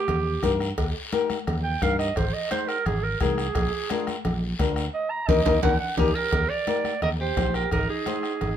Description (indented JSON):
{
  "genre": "latin, cumbia",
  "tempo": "173 BPM",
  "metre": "4/4",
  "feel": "straight",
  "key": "Eb major",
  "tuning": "A4 = 444 Hz",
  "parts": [
    { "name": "growling clarinet", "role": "melody", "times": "0.0-8.6 s", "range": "G4 to Bb5", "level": "-27 LUFS", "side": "right 5 dB", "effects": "none" },
    { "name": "fingered electric bass", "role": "bass", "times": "0.1-8.6 s", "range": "Ab1 to G2", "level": "-28 LUFS", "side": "equal", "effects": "none" },
    { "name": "bombo", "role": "percussion", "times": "0.1-8.6 s", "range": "none", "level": "-30 LUFS", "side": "left 1 dB", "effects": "none" },
    { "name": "congas", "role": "percussion", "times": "0.1-8.6 s", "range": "none", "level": "-33 LUFS", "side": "left 2 dB", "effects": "none" },
    { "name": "cowbell and timbales", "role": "percussion", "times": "0.1-8.6 s", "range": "none", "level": "-34 LUFS", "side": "right 4 dB", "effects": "none" },
    { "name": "guiro", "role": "percussion", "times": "0.1-8.6 s", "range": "none", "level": "-38 LUFS", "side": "left 5 dB", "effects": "none" },
    { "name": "flamenco guitar", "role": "accompaniment", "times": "0.4-8.3 s", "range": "D4 to C5", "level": "-27 LUFS", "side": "left 7 dB", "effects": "none" },
    { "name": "clean electric guitar", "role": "second line", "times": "6.0-8.6 s", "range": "Eb4 to Bb4", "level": "-33 LUFS", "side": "right 1 dB", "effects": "none" }
  ],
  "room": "light reverb",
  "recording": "minimal, uncompressed stereo recording",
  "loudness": "-22 LUFS",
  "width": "side -9 dB against mid",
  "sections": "0.0-6.3 A section; 6.3-8.6 B section",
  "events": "clarinet solo 0.0-6.3; band accent 4.9-6.3; drum fill 5.5-6.3",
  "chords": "0.0 Eb; 2.2 Ab; 3.6 Bb7; 4.9 Eb; 7.7 Ab",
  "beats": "0.09 0.43 | 0.78 1.13 1.48 1.82 | 2.17 2.52 2.87 3.21 | 3.56 3.90 4.25 4.60 | 4.95 5.29 5.64 5.99 | 6.33 6.68 7.03 7.37 | 7.72 8.07 8.41"
}